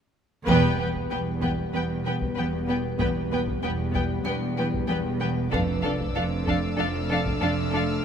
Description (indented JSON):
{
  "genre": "cinematic, suspense film score",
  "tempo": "95 BPM",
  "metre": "4/4",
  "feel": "straight",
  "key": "E phrygian",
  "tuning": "A4 = 438 Hz",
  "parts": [
    { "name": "warm studio violin section", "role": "melody", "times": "0.5-7.8 s", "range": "F5 to G5", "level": "-34 LUFS", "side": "left 3 dB", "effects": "none" },
    { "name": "rich studio violin section", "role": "second line", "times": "0.5-7.8 s", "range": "A4 to B4", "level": "-33 LUFS", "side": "left 1 dB", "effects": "none" },
    { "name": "warm studio viola section", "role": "accompaniment", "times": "0.5-7.8 s", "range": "B3 to D4", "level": "-32 LUFS", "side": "right 1 dB", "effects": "none" },
    { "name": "mellow French horn section", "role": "sustained chords", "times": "0.5-8.0 s", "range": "G3 to D4", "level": "-31 LUFS", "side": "left 4 dB", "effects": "none" },
    { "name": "warm studio cello section", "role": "riff", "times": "0.5-7.9 s", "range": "E2 to F3", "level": "-32 LUFS", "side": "right 2 dB", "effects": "none" },
    { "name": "warm studio cello section", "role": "bass", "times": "0.5-8.0 s", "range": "E2 to F2", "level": "-32 LUFS", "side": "right 4 dB", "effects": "none" },
    { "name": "warm studio double bass section", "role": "bass", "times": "0.5-8.0 s", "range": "E1 to F1", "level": "-31 LUFS", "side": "right 3 dB", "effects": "none" },
    { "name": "taiko ensemble", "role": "drums", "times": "0.5-7.9 s", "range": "none", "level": "-34 LUFS", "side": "equal", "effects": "none" },
    { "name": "music box", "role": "texture", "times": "0.5-7.4 s", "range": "D4 to B5", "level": "-38 LUFS", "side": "equal", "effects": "none" },
    { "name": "warm studio violin section", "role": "texture", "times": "5.5-8.0 s", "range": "D6 to F6", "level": "-36 LUFS", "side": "left 2 dB", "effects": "none" }
  ],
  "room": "moderate concert hall reverb, RT60 2.3 s",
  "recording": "none",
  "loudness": "-23 LUFS",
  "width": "side -8 dB against mid",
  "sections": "0.5-8.0 A section",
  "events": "break 0.0-0.5; band accent 0.5-1.1",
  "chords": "0.5 Em; 5.5 Dm/F"
}